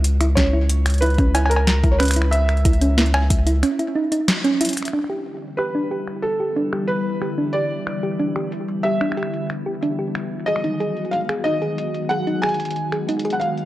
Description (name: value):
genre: IDM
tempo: 92 BPM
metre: 4/4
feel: straight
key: unclear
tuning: A4 = 440 Hz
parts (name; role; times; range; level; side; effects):
- round analog bass; bass; 0.0-3.6 s; C#2; -18 LUFS; equal; none
- booming analog drum machine; drums; 0.0-13.7 s; cabasa, cowbell, finger snaps, hi-hat, snare drum; -23 LUFS; equal; low-pass filter on hats, low-pass filter on perc, low-pass filter on snare
- thumb-piano-like synth pluck; arpeggios; 0.2-13.4 s; C#4 to G#4; -24 LUFS; right 2 dB; chorus, cassette tape, tape echo
- felt-muted upright piano; melody; 0.4-13.7 s; A4 to G#5; -25 LUFS; equal; analog delay
- electronic kick drum; drums; 0.4-3.4 s; none; -18 LUFS; equal; none
- glassy FM pad; sustained chords; 4.9-13.7 s; D3 to F#4; -26 LUFS; left 2 dB; ensemble chorus, built-in reverb
room: light reverb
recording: dry, gritty hardware recording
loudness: -18 LUFS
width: side -15 dB against mid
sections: 0.0-4.9 A section; 4.9-13.7 B section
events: break 3.6-4.9; band accent 4.3-4.6; filter sweep on drum 4.9-13.7; filter sweep on synth arpeggio sound 4.9-13.7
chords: 0.0 C#m; 4.9 Em7; 10.2 G#m7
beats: 0.37 1.02 1.67 | 2.33 2.98 3.63 4.28 | 4.93 5.59 6.24 6.89 | 7.54 8.20 8.85 9.50 | 10.15 10.80 11.46 12.11 | 12.76 13.41